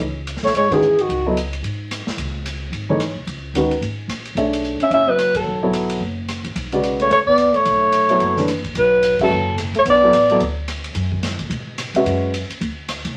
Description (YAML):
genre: modal jazz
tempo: 219 BPM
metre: 4/4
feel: swing 59% on 8ths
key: C# phrygian, B dorian from 8.8 s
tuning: A4 = 439 Hz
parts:
  - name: upright bass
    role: bass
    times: 0.0-13.1 s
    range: F#1 to C3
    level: -30 LUFS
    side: equal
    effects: none
  - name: swinging big-band drum kit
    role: drums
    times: 0.3-13.1 s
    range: crash cymbal, hi-hat, kick drum, ride cymbal, rim click, snare drum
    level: -32 LUFS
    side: equal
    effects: none
  - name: mellow alto saxophone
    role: melody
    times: 0.4-1.3, 4.8-10.4 s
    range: F#4 to E5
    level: -17 LUFS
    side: equal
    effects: none
  - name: breathy trombone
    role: second line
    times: 0.4-1.3, 4.8-10.4 s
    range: D#3 to C#4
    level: -26 LUFS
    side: equal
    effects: none
  - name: warm baby grand piano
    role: accompaniment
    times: 0.7-12.3 s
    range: C#3 to E5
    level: -22 LUFS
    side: equal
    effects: none
room: wet studio ambience, RT60 0.5 s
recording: vinyl crackle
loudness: -19 LUFS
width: mono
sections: 0.0-8.8 A section; 8.8-13.2 B section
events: band accent 0.7, 5.3, 9.2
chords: 0.0 C#5; 4.4 Bm11; 8.8 Bmadd9